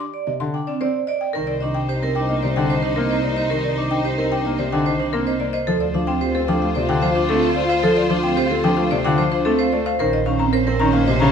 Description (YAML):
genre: classical, minimalist pattern music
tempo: 111 BPM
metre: 4/4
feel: straight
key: unclear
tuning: A4 = 440 Hz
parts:
  - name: buzzing marimba with medium hard mallets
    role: melody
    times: 0.0-11.3 s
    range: G4 to C6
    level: -25 LUFS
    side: left 8 dB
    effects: none
  - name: warm baby grand piano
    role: accompaniment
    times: 0.0-11.3 s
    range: C3 to C4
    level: -23 LUFS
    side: left 2 dB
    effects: none
  - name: vibraphone with medium hard mallets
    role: arpeggios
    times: 0.0-11.3 s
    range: C4 to D5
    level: -23 LUFS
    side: right 5 dB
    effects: none
  - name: rich studio violin section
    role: sustained chords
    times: 1.3-11.3 s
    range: Db4 to C5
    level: -28 LUFS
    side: left 4 dB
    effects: none
  - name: mellow French horn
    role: second line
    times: 1.4-11.3 s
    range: Db4 to F4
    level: -28 LUFS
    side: right 1 dB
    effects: none
  - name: rich studio double bass section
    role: bass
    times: 1.4-11.3 s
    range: Bb1 to D2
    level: -26 LUFS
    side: right 2 dB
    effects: none
room: moderate recital hall reverb, RT60 1.5 s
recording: none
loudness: -17 LUFS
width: side -7 dB against mid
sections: 0.0-1.3 A section; 1.3-11.3 B section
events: none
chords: 0.0 Cm; 1.3 Cm7; 5.7 Dm7; 10.0 Bbmadd9